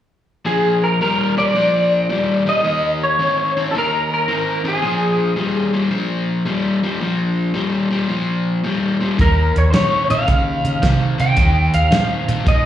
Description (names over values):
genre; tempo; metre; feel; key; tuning
electric blues shuffle; 110 BPM; 4/4; swing 67% on 8ths; unclear; A4 = 440 Hz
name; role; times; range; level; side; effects
electric guitar at the edge of break-up; melody; 0.5-5.7, 9.2-12.7 s; Ab4 to G5; -18 LUFS; equal; ensemble chorus, slapback echo
crunchy overdriven guitar; riff; 0.5-12.7 s; Bb2 to C4; -19 LUFS; left 2 dB; slapback echo
vintage muted fingered electric bass; bass; 9.2-12.7 s; Eb2 to Db3; -17 LUFS; right 1 dB; none
warm soul drum kit; drums; 9.2-12.6 s; hi-hat, kick drum, snare drum; -17 LUFS; equal; none
room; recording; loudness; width
light reverb; live gig heard through the venue's PA, club reverb, studio reverb; -15 LUFS; side -11 dB against mid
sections
0.5-12.7 A section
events
none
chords
0.5 Bb; 2.6 Eb5; 4.8 Bb5; 9.2 Eb7(no3)